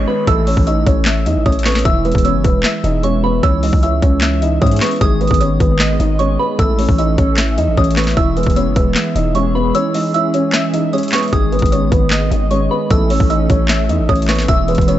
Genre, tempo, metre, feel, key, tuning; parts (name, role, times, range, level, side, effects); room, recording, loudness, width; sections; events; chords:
hip hop, trap; 152 BPM; 4/4; half-time; G# phrygian; A4 = 439 Hz
felt-muted upright piano; melody; 0.0-15.0 s; G#3 to E5; -19 LUFS; equal; digital delay
soft synth bell; second line; 0.0-15.0 s; B5 to E6; -23 LUFS; right 2 dB; chorus, phaser, digital delay
warbly lo-fi synth keys; accompaniment; 0.0-15.0 s; D#3 to E5; -20 LUFS; right 1 dB; chorus
distorted 808-style bass; bass; 0.0-15.0 s; E1 to G#2; -18 LUFS; equal; distortion
downlifter; sound effects; 0.0-1.9 s; -37 LUFS; right 1 dB
trap drum kit; drums; 0.3-15.0 s; handclaps, hi-hat, kick drum, snare drum; -17 LUFS; equal; overdrive
hollow soft pad; sustained chords; 5.0-15.0 s; D#3 to A4; -25 LUFS; equal; ensemble chorus
light reverb; nothing above 7.9 kHz; -12 LUFS; side -12 dB against mid
0.0-11.3 A section; 11.3-15.0 A section
kick muted 9.7-11.3
0.3 A; 1.9 E; 3.4 C#m; 5.0 G#m; 6.6 A; 8.2 E; 9.7 C#m; 11.3 G#m; 12.9 A; 14.5 E